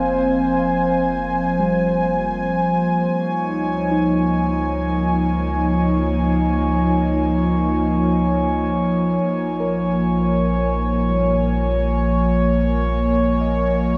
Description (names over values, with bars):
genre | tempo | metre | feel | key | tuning
ambient | free time | none | none | unclear | A4 = 441 Hz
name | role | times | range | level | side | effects
warm analog pad | sustained chords | 0.0-14.0 s | F3 to Ab5 | -21 LUFS | equal | chorus
muted felt-like synth keys | arpeggios | 0.0-14.0 s | G3 to F5 | -33 LUFS | equal | none
warm sub bass | bass | 0.0-14.0 s | F1 to Db2 | -28 LUFS | equal | none
bowed-like drone | drone | 0.1-14.0 s | Bb3 | -32 LUFS | equal | none
glass harmonica | texture | 3.1-14.0 s | Db5 to Db6 | -31 LUFS | equal | shimmer reverb
room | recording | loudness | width
wet huge ambient reverb, RT60 8.0 s | dreamy mix soaked in reverb, nothing above 10.5 kHz | -19 LUFS | mono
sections
0.0-14.0 A section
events
fade-in on sub bass 0.0-14.0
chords
0.0 Fm; 3.1 Dbadd9; 9.2 Bbm7